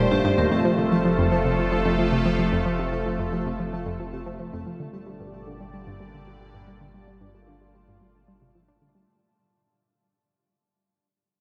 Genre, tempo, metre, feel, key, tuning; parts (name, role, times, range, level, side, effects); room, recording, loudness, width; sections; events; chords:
ambient, sequencer-driven space music; 112 BPM; 4/4; straight; G minor; A4 = 439 Hz
sweeping resonant pad; sustained chords; 0.0-9.1 s; Bb2 to D5; -30 LUFS; equal; chorus, shimmer reverb
vibraphone with hard mallets; arpeggios; 0.0-0.5 s; G3 to D5; -31 LUFS; equal; delay, shimmer reverb
analog pluck; riff; 0.0-9.1 s; Eb2 to D4; -28 LUFS; equal; chorus, cassette tape, delay
round analog bass; bass; 0.0-9.1 s; Eb1 to G1; -38 LUFS; equal
pulsing gated texture; texture; 0.0-9.1 s; A3 to A5; -34 LUFS; equal; chorus, built-in reverb, shimmer reverb
wet huge ambient reverb, RT60 7.9 s; -23 LUFS; mono
0.0-9.1 A section
fade-out 0.0-9.1; filter sweep on synth arpeggio sound 0.0-9.1
0.0 Ebadd9; 0.5 F; 4.8 Gm